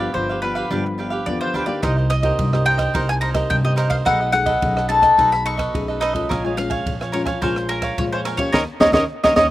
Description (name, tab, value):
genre	samba and choro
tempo	107 BPM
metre	4/4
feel	straight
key	unclear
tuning	A4 = 440 Hz
part	mandolin	melody	0.0-9.5 s	Bb4 to C#6	-19 LUFS	left 1 dB	slapback echo
part	cavaquinho	accompaniment	0.0-9.5 s	D4 to Ab5	-25 LUFS	right 3 dB	slapback echo
part	nylon-string guitar	accompaniment	0.0-9.5 s	F2 to G#4	-26 LUFS	left 4 dB	none
part	upright bass	bass	0.0-9.5 s	G1 to C3	-24 LUFS	right 1 dB	none
part	compact cocktail drum kit	drums	1.8-9.5 s	kick drum, ride cymbal, rim click, snare drum	-26 LUFS	equal	none
room	little or no reverb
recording	recorded outdoors, with no room sound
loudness	-17 LUFS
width	side -15 dB against mid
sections	0.0-9.5 A section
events	band accent 8.5-9.5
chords	0.0 G7; 1.8 Cm7; 4.1 B13; 6.3 Bbm7; 8.5 Eb5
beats	0.15 0.71 1.26 | 1.82 2.38 2.94 3.50 | 4.06 4.62 5.18 5.74 | 6.30 6.86 7.42 7.98 | 8.54 9.10